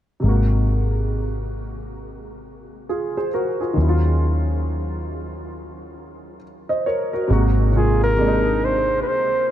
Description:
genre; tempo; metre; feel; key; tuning
R&B; 68 BPM; 4/4; swing 62% on 16ths; unclear; A4 = 441 Hz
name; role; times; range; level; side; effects
warm concert grand piano; accompaniment; 0.2-9.5 s; C3 to Eb5; -24 LUFS; equal; analog chorus
vintage muted fingered electric bass; bass; 0.2-9.0 s; Ab1 to Eb2; -20 LUFS; equal; none
trumpet with bucket mute; melody; 7.8-9.5 s; Ab4 to C5; -19 LUFS; right 1 dB; ping-pong delay
room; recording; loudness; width
light reverb, small room ambience; none; -18 LUFS; side -11 dB against mid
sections
0.2-7.3 A section; 7.3-9.5 B section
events
none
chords
0.2 Ab9; 3.8 Ebm9; 7.3 Ab9

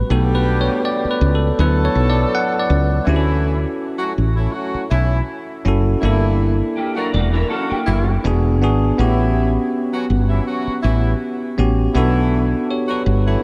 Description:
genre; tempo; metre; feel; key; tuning
R&B, neo-soul; 81 BPM; 4/4; swing 54% on 16ths; D major; A4 = 442 Hz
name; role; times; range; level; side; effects
bell-like tine electric piano; accompaniment; 0.0-13.4 s; F#3 to F#5; -22 LUFS; equal; none
warm horn section; stabs; 0.1-13.4 s; E3 to A4; -28 LUFS; equal; analog delay
woody fretless electric bass; bass; 0.1-13.3 s; E1 to D2; -19 LUFS; equal; subtle chorus
electric guitar through a small old amp; second line; 6.8-8.2 s; Bb3 to D5; -28 LUFS; equal; ensemble chorus
room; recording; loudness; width
light reverb, digital ambience; none; -18 LUFS; mono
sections
0.0-3.1 A section; 3.1-13.4 B section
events
tine electric piano solo 0.0-3.1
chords
0.1 Gmaj9/B; 1.6 D6; 3.1 Dmaj9; 6.0 Gm6; 8.2 E9; 9.0 A13; 11.9 Gmaj9/B

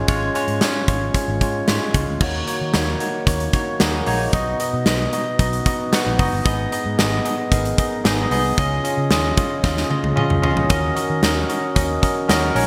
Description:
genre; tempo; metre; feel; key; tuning
1980s-style pop; 113 BPM; 4/4; straight; unclear; A4 = 441 Hz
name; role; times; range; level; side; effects
bell-like tine electric piano; accompaniment; 0.0-12.7 s; G#2 to F#5; -23 LUFS; equal; lush chorus
vintage muted fingered electric bass; bass; 0.0-12.7 s; F#1 to D#3; -27 LUFS; equal; none
big rock drum kit; drums; 0.1-12.7 s; crash cymbal, hi-hat, kick drum, snare drum, toms; -23 LUFS; equal; gated reverb
room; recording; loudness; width
moderate lush hall reverb, RT60 2.2 s; bright 1980s-style digital production; -20 LUFS; mono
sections
0.0-2.2 A section; 2.2-12.7 B section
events
drum fill 9.6-10.7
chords
0.0 C#; 2.2 D#m7; 4.3 B; 6.5 G#m; 8.6 C#add9; 10.7 D#m7

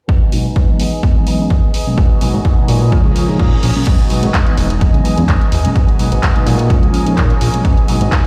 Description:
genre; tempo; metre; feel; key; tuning
filtered disco house; 127 BPM; 4/4; swing 53% on 16ths; G# minor; A4 = 442 Hz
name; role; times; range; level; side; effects
clear studio violin section; sustained chords; 0.1-8.3 s; C#4 to G#5; -29 LUFS; equal; sidechain pumping, low-pass filter
electric guitar with an envelope filter; riff; 0.1-8.3 s; E#3 to G#4; -27 LUFS; equal; vintage 12-bit sampler grit, sidechain pumping, low-pass filter
electronic kick drum; drums; 0.1-8.2 s; none; -16 LUFS; equal; none
mellow tine electric piano; accompaniment; 0.3-8.3 s; B2 to E#4; -21 LUFS; equal; phaser, sidechain pumping, low-pass filter
house drum kit; drums; 0.3-8.3 s; crash cymbal, handclaps, hi-hat; -26 LUFS; equal; sidechain pumping on hats, sidechain pumping on cymbals
fat analog bass; bass; 2.0-8.1 s; E1 to C#3; -18 LUFS; equal; sidechain pumping, low-pass filter
tambourine; percussion; 2.0-3.8 s; none; barely audible; none; none
reverse cymbal; sound effects; 3.1-3.9 s; none; -33 LUFS; equal; none
room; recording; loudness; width
light reverb; played on a big sound system in a bare room, stone room reverb; -13 LUFS; mono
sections
0.1-3.9 A section; 3.9-8.3 B section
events
filter sweep 0.1-3.9, 3.9-8.3; reverse cymbal 3.1-3.9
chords
0.1 G#m7; 0.8 Emaj7; 2.0 G#m7; 2.9 A#m7; 3.9 G#m7; 4.6 Emaj7; 5.8 G#m7; 6.7 A#m7; 7.6 G#m7

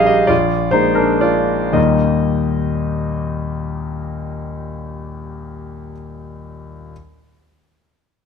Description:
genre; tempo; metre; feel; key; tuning
classical, piano waltz; 106-147 BPM; 3/4; rubato; Eb major; A4 = 436 Hz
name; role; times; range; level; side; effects
clear concert grand piano; solo; 0.0-6.9 s; Bb1 to G5; -16 LUFS; left 1 dB; none
room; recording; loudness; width
light reverb; close, detailed microphones; -15 LUFS; side -6 dB against mid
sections
0.0-1.8 A section; 1.8-4.7 B section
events
slowing down 0.0-1.8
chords
0.3 Bb7; 1.8 Eb

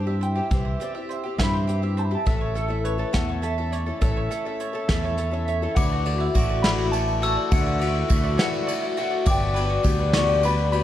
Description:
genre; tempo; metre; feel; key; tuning
indie folk with a building arrangement; 69 BPM (dotted quarters); 6/8; straight; D major; A4 = 439 Hz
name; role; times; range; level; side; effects
mellow electric guitar; melody; 0.0-10.8 s; A4 to C#6; -30 LUFS; equal; tremolo
picked twelve-string acoustic guitar; accompaniment; 0.0-10.8 s; A2 to A4; -28 LUFS; left 5 dB; none
mandolin; arpeggios; 0.0-10.8 s; D4 to E5; -31 LUFS; right 6 dB; none
fingered electric bass; bass; 0.0-10.8 s; G1 to G2; -25 LUFS; equal; none
soft brush drum kit; drums; 0.2-10.8 s; hi-hat, kick drum, ride cymbal, snare drum; -24 LUFS; equal; none
glockenspiel with brass mallets; second line; 5.8-10.8 s; D6 to E6; -32 LUFS; left 5 dB; digital delay
mellow brass ensemble; sustained chords; 5.8-10.8 s; D3 to B4; -36 LUFS; equal; none
tambourine; percussion; 5.8-10.8 s; none; -43 LUFS; right 7 dB; none
room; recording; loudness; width
light reverb; dark, warm production; -21 LUFS; side -12 dB against mid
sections
0.0-5.8 A section; 5.8-10.8 B section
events
none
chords
0.0 C; 2.3 A; 5.8 Dadd9; 9.3 Gmaj7

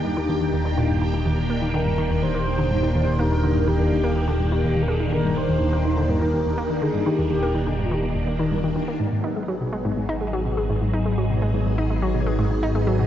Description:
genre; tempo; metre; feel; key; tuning
ambient, sequencer-driven space music; 124 BPM; 4/4; straight; G# minor from 9.0 s; A4 = 445 Hz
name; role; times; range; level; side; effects
phased string machine; sustained chords; 0.0-13.1 s; Eb3 to G#4; -25 LUFS; left 1 dB; ensemble chorus, phaser
analog pluck; riff; 0.0-13.0 s; Eb2 to D#4; -26 LUFS; equal; chorus, tape echo
fat analog bass; bass; 0.0-13.1 s; Eb1 to G#1; -25 LUFS; equal; none
bubbling stepped-filter texture; texture; 0.0-9.0 s; G5; -39 LUFS; right 2 dB; chorus, built-in reverb
mellow horn-like synth lead; melody; 1.7-8.0 s; F4 to C5; -28 LUFS; right 1 dB; chorus, tape echo
room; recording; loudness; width
moderate concert hall reverb, RT60 2.0 s; cassette tape, nothing above 7.8 kHz; -20 LUFS; side -11 dB against mid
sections
0.0-9.0 A section; 9.0-13.1 B section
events
none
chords
0.0 Ebmaj7; 9.0 G#m7

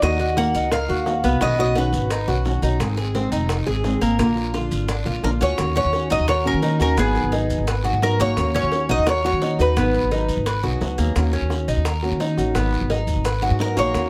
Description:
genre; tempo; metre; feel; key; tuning
latin, Cuban son and guajira; 172 BPM; 4/4; straight; Eb minor; A4 = 440 Hz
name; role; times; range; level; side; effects
Cuban tres; melody; 0.0-2.4, 5.2-10.6, 13.6-14.1 s; Ab4 to Gb5; -25 LUFS; equal; none
flamenco guitar; second line; 0.0-2.4, 5.2-10.6, 13.6-14.1 s; Cb4 to Bb4; -30 LUFS; equal; none
fingerpicked steel-string acoustic guitar; accompaniment; 0.0-14.1 s; B2 to Ab4; -29 LUFS; equal; none
Cuban tres; arpeggios; 0.0-14.1 s; Bb3 to Cb5; -28 LUFS; equal; none
upright bass; bass; 0.0-14.1 s; F1 to Eb3; -25 LUFS; equal; none
bongos; percussion; 0.0-14.1 s; none; -33 LUFS; equal; none
guiro; percussion; 0.0-14.1 s; none; -40 LUFS; equal; none
maracas; percussion; 0.0-14.1 s; none; -43 LUFS; equal; none
room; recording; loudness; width
little or no reverb; close, detailed microphones; -21 LUFS; mono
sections
0.0-5.6 A section; 5.6-14.1 B section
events
none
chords
0.0 Ebm; 1.4 Badd9; 2.8 Abadd9; 4.2 Bb; 5.6 Ebm7; 7.0 Abm7; 8.4 Ebm7; 9.8 Abm7; 11.2 Ebm7; 12.6 Abm7

